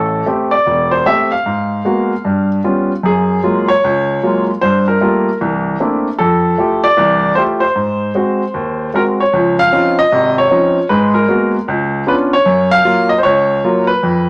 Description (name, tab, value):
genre	solo jazz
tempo	153 BPM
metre	4/4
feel	swing 64% on 8ths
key	Db major from 9.3 s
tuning	A4 = 440 Hz
part	clear upright piano	solo	0.0-14.3 s	E1 to F5	-14 LUFS	equal	none
room	wet studio reverb, RT60 0.8 s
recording	none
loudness	-14 LUFS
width	mono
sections	0.0-9.3 A section; 9.3-14.3 B section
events	none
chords	0.0 Am7; 1.5 Abm9; 2.2 G7#11; 3.0 Gbmaj9; 4.6 Gm9; 5.4 C13; 6.2 Fmaj9; 7.8 Ab7; 9.3 Dbmaj9; 10.9 Abm9; 11.7 Db7b9; 12.5 Gbmaj7